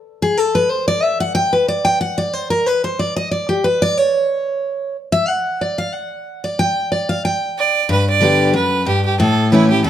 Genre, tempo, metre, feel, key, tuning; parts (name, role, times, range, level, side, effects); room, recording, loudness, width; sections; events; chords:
bluegrass; 184 BPM; 4/4; swing 53% on 8ths; G major; A4 = 440 Hz
picked steel-string acoustic guitar; accompaniment; 0.2-9.9 s; E2 to G5; -16 LUFS; equal
clear fiddle; melody; 7.6-9.9 s; E4 to D5; -16 LUFS; right 4 dB
light reverb; close, detailed microphones; -15 LUFS; side -10 dB against mid
0.0-7.9 A section; 7.9-9.9 B section
steel-string acoustic guitar solo 0.0-7.9
0.0 N.C.; 7.9 G; 9.2 A